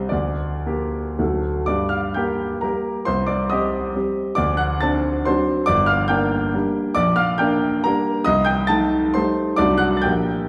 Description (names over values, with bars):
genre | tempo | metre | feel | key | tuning
classical, romantic triple-time dance for piano with dotted rhythms | 108-149 BPM | 3/4 | rubato | G minor | A4 = 441 Hz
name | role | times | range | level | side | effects
clear baby grand piano | solo | 0.0-10.5 s | G1 to A6 | -20 LUFS | equal | none
room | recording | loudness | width
wet recital hall reverb, RT60 1.6 s | heard from further back in the room | -20 LUFS | mono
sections
0.0-1.7 A section; 1.7-10.5 B section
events
none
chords
0.1 Gm/D; 1.2 D; 1.7 Gm; 3.1 Cm; 4.4 D7; 5.7 Gm; 7.0 Gm/Bb; 8.3 Am7b5/C; 9.6 D7/C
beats
| 0.12 0.67 1.19 | 1.69 2.17 2.63 | 3.08 3.52 3.95 | 4.38 4.83 5.27 | 5.69 6.11 6.55 | 6.97 7.41 7.86 | 8.27 8.71 9.17 | 9.60 10.05